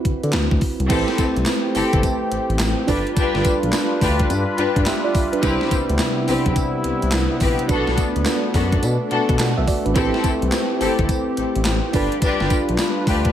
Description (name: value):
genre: R&B, new jack swing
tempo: 106 BPM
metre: 4/4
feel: swing 64% on 16ths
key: A minor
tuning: A4 = 438 Hz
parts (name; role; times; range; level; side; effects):
- mellow FM electric piano; accompaniment; 0.0-13.3 s; C4 to F#5; -25 LUFS; right 6 dB; chorus, tremolo, shimmer reverb
- smooth gliding synth bass; bass; 0.1-13.3 s; G1 to D3; -23 LUFS; equal; none
- gated 80s digital drum machine; drums; 0.1-13.3 s; crash cymbal, handclaps, hi-hat, kick drum, snare drum, tambourine; -22 LUFS; equal; gated reverb, gated reverb snare, overdrive
- sweeping resonant pad; sustained chords; 0.9-13.3 s; C3 to B4; -24 LUFS; left 2 dB; chorus, shimmer reverb
- warm symphonic string section; stabs; 0.9-13.3 s; B3 to B4; -24 LUFS; left 3 dB; ping-pong delay, shimmer reverb
room: light reverb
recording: none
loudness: -17 LUFS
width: side -10 dB against mid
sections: 0.9-13.3 A section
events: none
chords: 0.0 D13; 0.9 Am7; 2.9 G7; 5.4 Cmaj7; 7.7 Bm7; 10.0 Am7; 11.9 G7